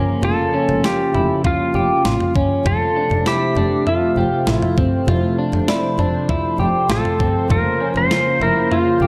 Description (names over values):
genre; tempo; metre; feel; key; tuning
dream pop; 99 BPM; 4/4; straight; F major; A4 = 440 Hz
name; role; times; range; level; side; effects
warm analog pad; sustained chords; 0.0-9.1 s; C3 to C5; -25 LUFS; equal; chorus
electric guitar through a small old amp; arpeggios; 0.0-9.1 s; C4 to E5; -24 LUFS; equal; subtle chorus, delay
clean lap steel guitar; melody; 0.2-9.1 s; F4 to C5; -22 LUFS; equal; delay
rich double bass; bass; 0.2-9.1 s; F1 to A1; -26 LUFS; equal; none
clean 12-bit digital drum machine; drums; 0.2-8.9 s; kick drum, snare drum, toms; -25 LUFS; equal; none
glassy synth bell; texture; 3.3-9.1 s; C5 to E5; -35 LUFS; equal; chorus, delay
room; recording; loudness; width
moderate lush hall reverb, RT60 2.1 s; none; -18 LUFS; mono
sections
0.0-9.1 A section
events
none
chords
0.0 Bbm/F; 2.7 Fmaj7; 7.5 Bbmadd9/F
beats
| 0.23 0.84 1.44 2.05 | 2.66 3.26 3.87 4.47 | 5.08 5.69 6.29 6.90 | 7.50 8.11 8.72